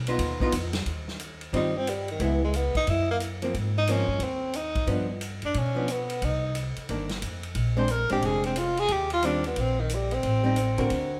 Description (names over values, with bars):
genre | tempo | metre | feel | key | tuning
jazz, small-group swing and bop | 179 BPM | 4/4 | swing 64% on 8ths | Eb major | A4 = 440 Hz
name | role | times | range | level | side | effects
upright bass | bass | 0.0-11.2 s | F1 to B2 | -32 LUFS | equal | none
archtop guitar, miked and amplified | accompaniment | 0.1-11.2 s | D3 to Bb4 | -32 LUFS | equal | none
vintage drum kit | drums | 0.1-11.0 s | hi-hat, kick drum, ride cymbal, snare drum | -38 LUFS | equal | none
clear tenor saxophone | melody | 1.6-10.9 s | Eb3 to C5 | -30 LUFS | equal | none
room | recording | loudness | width
moderate large studio reverb, RT60 1.3 s | band playing live in one room | -27 LUFS | mono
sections
0.9-11.2 A section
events
none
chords
0.0 Db9 (rootless); 0.9 Eb69; 2.2 Dbm7; 2.9 Gb; 3.5 Ab69; 4.9 G7; 6.2 Cm9; 7.6 Bb9; 8.9 Eb69; 10.2 Am7b5